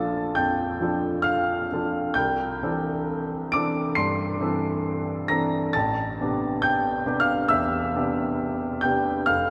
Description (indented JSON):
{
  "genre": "classical, impressionist solo piano",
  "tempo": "67 BPM",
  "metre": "4/4",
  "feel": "rubato",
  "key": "unclear",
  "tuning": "A4 = 441 Hz",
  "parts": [
    { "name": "clear grand piano", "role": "solo", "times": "0.0-9.5 s", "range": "F1 to D7", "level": "-25 LUFS", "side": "equal", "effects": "none" }
  ],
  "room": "wet cathedral reverb, RT60 4.7 s",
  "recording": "recorded in a church or concert hall",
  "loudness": "-25 LUFS",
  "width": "mono",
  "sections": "0.0-9.5 A section",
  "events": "none",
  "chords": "0.0 Bbmaj7; 2.1 C69; 5.7 Am11"
}